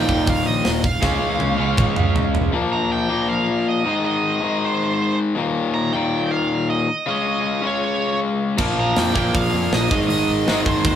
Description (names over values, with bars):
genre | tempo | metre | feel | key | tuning
punk rock | 159 BPM | 4/4 | straight | Eb major | A4 = 440 Hz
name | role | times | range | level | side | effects
smooth overdriven lead guitar | melody | 0.0-11.0 s | C5 to Bb5 | -24 LUFS | right 4 dB | none
crunchy overdriven guitar | riff | 0.0-2.5, 8.6-11.0 s | Eb2 to Db4 | -25 LUFS | right 9 dB | none
overdriven electric guitar | riff | 0.0-11.0 s | Eb2 to Db4 | -20 LUFS | left 4 dB | none
picked electric bass | bass | 0.0-2.5, 8.6-11.0 s | Eb1 to F2 | -26 LUFS | right 1 dB | none
tight metal drum kit | drums | 0.1-2.4, 8.6-10.9 s | crash cymbal, hi-hat, kick drum, snare drum, toms | -22 LUFS | right 1 dB | none
room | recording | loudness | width
moderate studio reverb, RT60 0.5 s | band playing live in one room | -17 LUFS | side -9 dB against mid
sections
0.0-2.5 A section; 2.5-11.0 A section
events
drum fill 1.0-2.5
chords
0.0 Eb; 1.0 Db; 2.5 Bb5; 3.9 Ab; 5.4 Eb; 7.1 Db5; 8.6 Bb5; 9.9 Ab